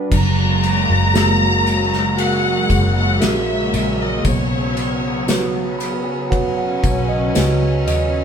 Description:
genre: pop ballad.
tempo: 58 BPM.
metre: 4/4.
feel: straight.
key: unclear.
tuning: A4 = 437 Hz.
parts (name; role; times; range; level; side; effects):
mellow tine electric piano; accompaniment; 0.0-8.2 s; F#3 to B5; -22 LUFS; right 5 dB; none.
lush unison pad; sustained chords; 0.0-8.2 s; C#3 to F#4; -22 LUFS; left 1 dB; chorus.
warm symphonic violin section; melody; 0.1-5.8 s; C#5 to A#5; -21 LUFS; left 1 dB; none.
vintage muted fingered electric bass; bass; 0.1-8.2 s; F#1 to D#2; -20 LUFS; left 1 dB; none.
loose indie drum kit; drums; 0.1-8.1 s; crash cymbal, kick drum, ride cymbal, snare drum; -22 LUFS; left 1 dB; none.
tambourine; percussion; 0.1-8.1 s; none; -35 LUFS; left 6 dB; none.
room: wet stone room reverb, RT60 1.0 s.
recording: band playing live in one room.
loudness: -15 LUFS.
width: side -7 dB against mid.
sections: 0.1-8.2 A section.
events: tine electric piano fill 5.3-8.2.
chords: 0.1 F#add9; 4.3 Bsus2.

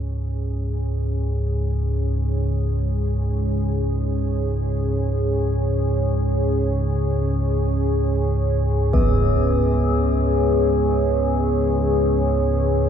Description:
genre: dark ambient drone.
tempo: free time.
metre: none.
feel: none.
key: unclear.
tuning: A4 = 436 Hz.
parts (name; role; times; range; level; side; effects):
deep dark ambient pad; sustained chords; 0.0-12.9 s; C#4 to C#5; -24 LUFS; left 1 dB; chorus, built-in reverb.
deep rumbling drone; drone; 0.0-12.9 s; C#2 to G#2; -21 LUFS; equal; built-in reverb.
impact; percussion; 8.9-9.2 s; none; -27 LUFS; left 1 dB; low-pass filter on sfx.
bronze singing bowl; texture; 8.9-12.9 s; B3 to B4; -26 LUFS; equal; none.
room: wet huge ambient reverb, RT60 8.3 s.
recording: none.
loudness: -19 LUFS.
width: side -8 dB against mid.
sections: 0.0-12.9 A section.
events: fade-in on ambient pad 0.0-12.9.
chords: 0.0 C#5.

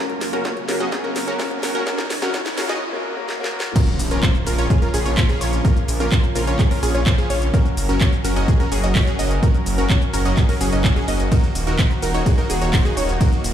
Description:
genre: EDM, festival progressive house.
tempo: 127 BPM.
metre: 4/4.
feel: straight.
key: Bb minor.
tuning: A4 = 440 Hz.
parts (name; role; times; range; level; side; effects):
clear grand piano; accompaniment; 0.0-3.7 s; Bb2 to Bb4; -30 LUFS; left 4 dB; sidechain pumping, tape echo.
lush unison pad; sustained chords; 0.0-13.5 s; Gb2 to Bb4; -28 LUFS; equal; chorus, sidechain pumping.
wide unison pluck; arpeggios; 0.0-13.3 s; Ab4 to Eb5; -29 LUFS; equal; sidechain pumping, tape echo.
supersaw stab; riff; 0.0-13.3 s; Db4 to Eb5; -26 LUFS; equal; sidechain pumping, low-pass filter, tape echo.
riser, swell and impact; sound effects; 0.0-5.6 s; none; -30 LUFS; equal; none.
house drum kit; drums; 0.1-13.5 s; crash cymbal, handclaps, hi-hat, ride cymbal, shaker, snare drum; -27 LUFS; equal; high-pass filter on hats, high-pass filter on snare, high-pass filter on cymbals, high-pass filter on perc.
electronic kick drum; drums; 0.5-13.3 s; none; -17 LUFS; equal; high-pass filter on kick, high-pass filter on room.
wide detuned saw bass; bass; 4.0-13.5 s; Eb1 to Bb1; -22 LUFS; equal; chorus, sidechain pumping.
room: light reverb, digital ambience.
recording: played on a big sound system in a bare room, large studio reverb, high-pass filter.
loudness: -17 LUFS.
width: side -10 dB against mid.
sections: 0.0-3.8 A section; 3.8-13.5 B section.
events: build-up 0.0-3.8; drum fill 0.0-2.8, 3.3-3.8; riser 0.0-2.8; filter sweep on analog synth pad 0.0-3.8; break 2.8-3.8; swell 2.8-3.8; drop 3.8-13.5; impact 3.8-5.6.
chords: 0.0 Gb; 3.8 Bbm; 7.5 Gb; 11.3 Ebm.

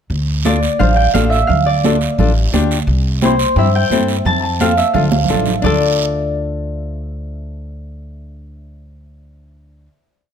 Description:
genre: latin, cumbia.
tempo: 174 BPM.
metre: 4/4.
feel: straight.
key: D minor.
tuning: A4 = 440 Hz.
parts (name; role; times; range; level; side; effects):
upright bass; bass; 0.1-9.9 s; A1 to G2; -18 LUFS; equal; none.
congas; percussion; 0.1-5.7 s; none; -20 LUFS; right 4 dB; none.
guiro; percussion; 0.1-5.7 s; none; -27 LUFS; right 8 dB; none.
Celtic harp; melody; 0.5-9.9 s; C5 to A5; -17 LUFS; equal; none.
flamenco guitar; accompaniment; 0.5-9.9 s; C4 to C5; -21 LUFS; left 6 dB; none.
room: light reverb.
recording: close, detailed microphones.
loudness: -13 LUFS.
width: side -8 dB against mid.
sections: 0.1-5.6 A section; 5.6-8.4 final chord.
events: drum fill 5.1-5.6.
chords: 0.1 Dm; 2.9 C; 4.3 F; 4.9 Dm.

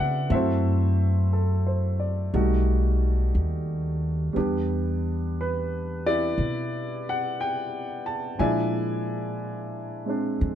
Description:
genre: jazz ballad.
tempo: 59 BPM.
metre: 4/4.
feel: swing 67% on 8ths.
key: unclear.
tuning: A4 = 443 Hz.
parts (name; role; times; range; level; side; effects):
clear baby grand piano; accompaniment; 0.0-10.6 s; F3 to A5; -27 LUFS; equal; none.
upright bass; bass; 0.0-10.6 s; B1 to C#3; -25 LUFS; equal; none.
room: little or no reverb.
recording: close, detailed microphones.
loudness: -23 LUFS.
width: side -10 dB against mid.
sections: 0.0-10.6 A section.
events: none.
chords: 0.3 F#m7b5; 2.3 B7b13; 4.3 Em7; 8.4 Bb7#11.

